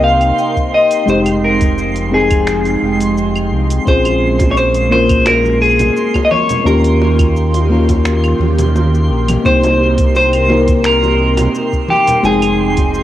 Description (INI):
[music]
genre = sunset chillout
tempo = 86 BPM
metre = 4/4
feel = straight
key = Bb dorian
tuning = A4 = 440 Hz
[part]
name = clean electric guitar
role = melody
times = 0.0-13.0 s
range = G4 to F5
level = -14 LUFS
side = left 1 dB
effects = cassette tape, tape echo
[part]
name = mellow FM electric piano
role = accompaniment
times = 0.0-13.0 s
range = Ab3 to G5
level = -17 LUFS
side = moving between left 3 dB and right 5 dB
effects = chorus, auto-pan, cassette tape
[part]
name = airy breathy pad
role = sustained chords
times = 0.0-13.0 s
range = C3 to G5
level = -22 LUFS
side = equal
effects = chorus, phaser, cassette tape
[part]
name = round analog bass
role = bass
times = 0.0-13.0 s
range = F1 to Eb2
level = -16 LUFS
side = equal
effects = transformer saturation
[part]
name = twinkling granular texture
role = texture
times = 0.0-13.0 s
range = C6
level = -26 LUFS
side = right 4 dB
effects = built-in reverb, cassette tape
[part]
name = deep house drum kit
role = drums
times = 0.2-13.0 s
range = claves, finger snaps, hi-hat, shaker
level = -25 LUFS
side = right 1 dB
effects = cassette tape
[part]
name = electronic kick drum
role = drums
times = 0.6-12.9 s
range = none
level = -16 LUFS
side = equal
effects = cassette tape
[part]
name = bongos and congas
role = percussion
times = 4.1-12.9 s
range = none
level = -24 LUFS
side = right 2 dB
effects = none
[sound]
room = moderate spring reverb, RT60 2.0 s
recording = home recording on cassette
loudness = -10 LUFS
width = side -13 dB against mid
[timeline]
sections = 0.0-13.0 A section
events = none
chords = 0.0 Cm7; 1.1 Fm9; 3.9 Bbm9; 6.7 Eb7; 9.4 Cm7; 12.2 Fm9